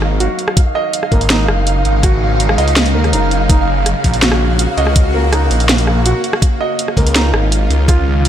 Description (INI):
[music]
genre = half-time drum and bass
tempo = 164 BPM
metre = 4/4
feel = half-time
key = unclear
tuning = A4 = 440 Hz
[part]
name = bowed-like drone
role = sustained chords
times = 0.0-8.3 s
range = Db3 to F5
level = -22 LUFS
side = equal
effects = built-in reverb, phaser, vintage 12-bit sampler grit, sidechain pumping
[part]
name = felt-muted upright piano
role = arpeggios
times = 0.0-8.3 s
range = Bb3 to Eb5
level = -20 LUFS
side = right 3 dB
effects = vintage 12-bit sampler grit, dub echo
[part]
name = phased detuned saw bass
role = bass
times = 0.0-8.3 s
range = Gb1 to Eb2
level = -14 LUFS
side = equal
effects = phaser
[part]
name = drum and bass drum kit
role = drums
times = 0.0-8.3 s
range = hi-hat, rim click, snare drum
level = -17 LUFS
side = equal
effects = none
[part]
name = flickering grainy texture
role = texture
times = 0.0-8.3 s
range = F5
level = -23 LUFS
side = right 1 dB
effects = built-in reverb
[part]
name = electronic kick drum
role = drums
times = 0.6-8.0 s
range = none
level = -13 LUFS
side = equal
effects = none
[sound]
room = light reverb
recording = none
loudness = -11 LUFS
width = side -10 dB against mid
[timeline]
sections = 0.0-8.3 A section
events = none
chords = 0.0 Ebmadd9; 0.6 Absus4; 3.5 Gb; 6.4 Dbadd9